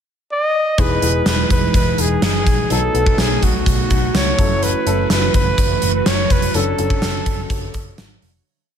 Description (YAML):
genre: 1980s-style pop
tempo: 125 BPM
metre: 4/4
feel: straight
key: E major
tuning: A4 = 439 Hz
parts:
  - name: clear flugelhorn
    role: melody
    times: 0.3-8.0 s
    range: F#4 to D#5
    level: -20 LUFS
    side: right 1 dB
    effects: slapback echo
  - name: warm baby grand piano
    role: accompaniment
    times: 0.8-8.5 s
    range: E3 to A4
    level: -25 LUFS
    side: left 4 dB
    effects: slapback echo
  - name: string machine, violas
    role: sustained chords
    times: 0.8-8.4 s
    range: B2 to C#5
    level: -24 LUFS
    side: right 1 dB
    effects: phaser, ensemble chorus
  - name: vintage muted picked electric bass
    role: bass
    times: 0.8-8.4 s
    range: E1 to C#2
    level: -22 LUFS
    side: equal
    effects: none
  - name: gated 80s drum kit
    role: drums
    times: 0.8-8.3 s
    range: hi-hat, kick drum, snare drum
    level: -18 LUFS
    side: equal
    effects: none
room: light reverb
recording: none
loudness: -14 LUFS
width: side -8 dB against mid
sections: 0.0-0.8 pickup bar; 0.8-8.5 verse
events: fade-out 6.5-8.5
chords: 0.0 N.C.; 0.8 Emaj7; 2.7 B7; 4.4 F#m7; 6.5 Dmaj7/F#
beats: 0.30 | 0.78 1.26 1.74 2.22 | 2.70 3.18 3.66 4.14 | 4.62 5.10 5.58 6.06 | 6.54 7.02 7.50 7.98